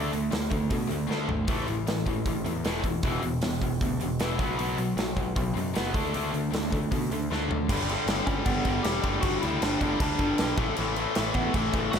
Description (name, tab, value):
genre	punk rock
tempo	155 BPM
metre	4/4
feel	straight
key	unclear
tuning	A4 = 440 Hz
part	overdriven electric guitar	riff	0.0-12.0 s	E2 to D4	-32 LUFS	right 12 dB	none
part	tight distorted guitar	riff	0.0-12.0 s	E2 to D4	-31 LUFS	left 13 dB	distortion
part	growling picked electric bass	bass	0.0-12.0 s	E1 to D3	-33 LUFS	right 1 dB	overdrive
part	big rock drum kit	drums	0.1-12.0 s	crash cymbal, hi-hat, kick drum, snare drum, toms	-30 LUFS	equal	none
part	lightly driven lead guitar	melody	8.3-12.0 s	A3 to G4	-30 LUFS	equal	none
room	little or no reverb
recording	none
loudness	-25 LUFS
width	side -7 dB against mid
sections	0.0-7.7 A section; 7.7-12.0 B section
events	drum fill 1.1-1.5, 7.3-7.7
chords	0.0 D5; 1.5 A5; 3.0 E5; 4.4 B5; 5.9 D5; 7.7 G5; 10.6 A5